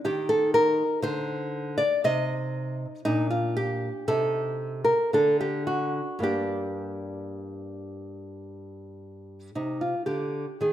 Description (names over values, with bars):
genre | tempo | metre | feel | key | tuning
classical, baroque-style dance for nylon-string guitar | 52-62 BPM | 3/4 | rubato | G minor | A4 = 438 Hz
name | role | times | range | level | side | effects
nylon-string guitar | solo | 0.0-10.7 s | G2 to Eb5 | -25 LUFS | equal | none
room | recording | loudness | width
moderate recital hall reverb, RT60 1.6 s | minimal, uncompressed stereo recording | -24 LUFS | side -11 dB against mid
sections
0.0-9.6 A section; 9.6-10.7 A section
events
none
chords
0.0 Cm9; 2.0 Cm; 3.0 Gm/Bb; 4.1 Adim/C; 5.1 N.C.; 6.2 Gm; 9.6 Cm